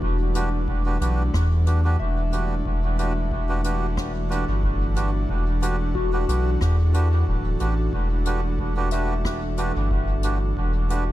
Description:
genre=ambient dub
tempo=91 BPM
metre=4/4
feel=swing 55% on 16ths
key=E minor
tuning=A4 = 439 Hz
part: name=airy breathy pad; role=sustained chords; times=0.0-11.1 s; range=E3 to B4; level=-30 LUFS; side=right 1 dB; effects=chorus
part: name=soft synth bell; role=arpeggios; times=0.0-11.1 s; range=F#4 to E5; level=-35 LUFS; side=left 6 dB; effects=chorus, phaser, dub echo
part: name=soft dub sub bass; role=bass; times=0.0-11.1 s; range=D1 to E2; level=-23 LUFS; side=equal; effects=none
part: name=electronic kick drum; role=drums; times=0.0-10.7 s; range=none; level=-29 LUFS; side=equal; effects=overdrive
part: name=melodica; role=stabs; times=0.3-11.0 s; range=D4 to B4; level=-30 LUFS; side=right 2 dB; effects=dub echo
part: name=jazz brush drum kit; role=drums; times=0.3-11.0 s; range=hi-hat, rim click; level=-36 LUFS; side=left 2 dB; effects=dub echo
room=small room ambience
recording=none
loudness=-20 LUFS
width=side -15 dB against mid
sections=0.0-11.1 A section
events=none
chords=0.0 Em9

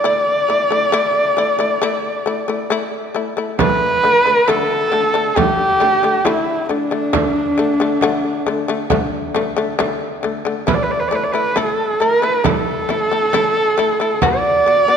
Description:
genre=mongolian traditional, Mongolian folk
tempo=68 BPM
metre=4/4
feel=straight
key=D zhi mode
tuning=A4 = 438 Hz
part: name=warm horsehead fiddle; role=melody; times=0.0-15.0 s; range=D4 to D5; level=-16 LUFS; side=right 1 dB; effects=none
part: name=shamisen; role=arpeggios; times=0.0-15.0 s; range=D3 to F#4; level=-20 LUFS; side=left 5 dB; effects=none
part: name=frame drum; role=percussion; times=3.6-14.8 s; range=none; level=-23 LUFS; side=right 6 dB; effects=none
room=moderate scoring stage reverb, RT60 2.0 s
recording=none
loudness=-14 LUFS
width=side -7 dB against mid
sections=0.0-3.6 A section; 3.6-15.0 B section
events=none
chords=0.0 A5; 3.6 D5; 10.7 A5; 14.2 B5

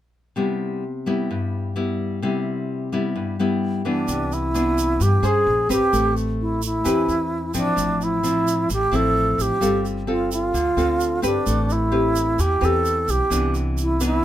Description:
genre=bossa nova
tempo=130 BPM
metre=4/4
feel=straight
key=C major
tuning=A4 = 440 Hz
part: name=nylon-string guitar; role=accompaniment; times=0.4-14.2 s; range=G2 to C5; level=-23 LUFS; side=left 2 dB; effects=none
part: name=bright reedy wooden-headed alto flute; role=melody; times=3.9-14.2 s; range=D4 to A4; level=-21 LUFS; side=right 1 dB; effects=none
part: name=upright bass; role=bass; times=4.1-14.2 s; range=G1 to G2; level=-25 LUFS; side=equal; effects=none
part: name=tube shaker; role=percussion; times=4.1-14.2 s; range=none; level=-32 LUFS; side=right 8 dB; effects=none
room=light reverb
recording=minimal, uncompressed stereo recording, faint mains hum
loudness=-19 LUFS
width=side -12 dB against mid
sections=0.4-4.1 A section; 4.1-14.2 B section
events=none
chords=0.4 Cmaj7; 4.1 Cmaj9; 5.5 Bbm9; 5.9 Am9; 7.8 Fmaj9/A; 9.6 G9sus4; 11.5 Am9; 13.3 Cmaj9

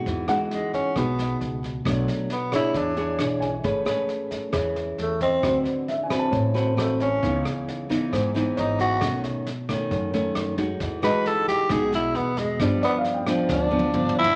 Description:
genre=bossa nova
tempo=134 BPM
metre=4/4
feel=straight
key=E major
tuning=A4 = 442 Hz
part: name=nylon-string guitar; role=accompaniment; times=0.0-14.4 s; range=F#2 to C#5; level=-27 LUFS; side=equal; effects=none
part: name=upright bass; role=bass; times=0.0-14.4 s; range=G#1 to G2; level=-35 LUFS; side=equal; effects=none
part: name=vintage brush drum kit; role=drums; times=0.1-14.3 s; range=kick drum, rim click, snare drum, toms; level=-36 LUFS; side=equal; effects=none
part: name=warm baby grand piano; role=accompaniment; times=0.3-14.4 s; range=C#5 to A5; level=-33 LUFS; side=equal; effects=none
part: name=growling tenor saxophone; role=melody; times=0.5-14.4 s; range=G3 to B4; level=-27 LUFS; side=equal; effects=none
room=moderate large studio reverb, RT60 1.3 s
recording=none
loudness=-24 LUFS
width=mono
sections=0.1-14.4 A section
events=tenor saxophone solo 0.1-14.4; drum fill 13.5-14.4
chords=0.1 Emaj9; 1.8 Bm7; 2.7 E6; 3.6 Amaj9; 5.4 D13; 7.2 C#m9; 9.0 B9; 10.8 Emaj9; 12.6 G7

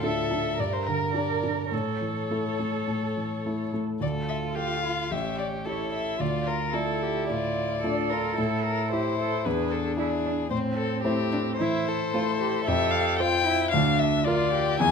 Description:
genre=quick classical-period movement for piano quartet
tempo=111 BPM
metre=4/4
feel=rubato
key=unclear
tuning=A4 = 439 Hz
part: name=muted violin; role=melody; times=0.0-14.9 s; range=G4 to G#5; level=-29 LUFS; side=left 7 dB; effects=none
part: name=muted cello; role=second line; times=0.0-14.9 s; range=C4 to Bb4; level=-32 LUFS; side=right 10 dB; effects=none
part: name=muted violin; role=second line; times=0.0-14.9 s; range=C4 to Bb4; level=-32 LUFS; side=left 3 dB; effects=none
part: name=warm grand piano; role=accompaniment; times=0.0-14.9 s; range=A1 to E5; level=-28 LUFS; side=equal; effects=none
room=moderate recital hall reverb, RT60 1.8 s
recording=close, detailed microphones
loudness=-24 LUFS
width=side -6 dB against mid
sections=0.0-4.0 A section; 4.0-14.9 B section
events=none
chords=0.0 Dm; 0.6 Gm; 1.7 A; 4.0 Dm; 5.1 A7; 6.2 Dm; 8.4 Am; 9.5 E7; 10.5 Am; 12.7 Fmaj7; 13.7 Bb/D

